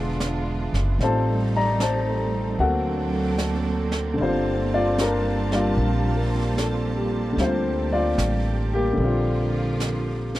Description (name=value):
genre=jazz ballad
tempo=75 BPM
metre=4/4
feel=swing 67% on 8ths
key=G minor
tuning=A4 = 442 Hz
part: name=warm upright piano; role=accompaniment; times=0.0-10.4 s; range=D3 to Bb5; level=-24 LUFS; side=left 2 dB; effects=none
part: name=rich studio string section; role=sustained chords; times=0.0-10.4 s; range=D3 to A5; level=-28 LUFS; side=right 4 dB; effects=none
part: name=upright bass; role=bass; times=0.0-10.4 s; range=E1 to D2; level=-25 LUFS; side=equal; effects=none
part: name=jazz brush drum kit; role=drums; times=0.2-10.4 s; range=brushed snare drum, hi-hat, snare drum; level=-33 LUFS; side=right 2 dB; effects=none
room=little or no reverb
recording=dry, close 1970s-style studio recording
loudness=-21 LUFS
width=side -15 dB against mid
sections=0.0-10.4 A section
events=none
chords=0.0 E7b9; 1.0 Am7b5; 2.6 D7b13; 4.2 Gm11; 9.0 Bb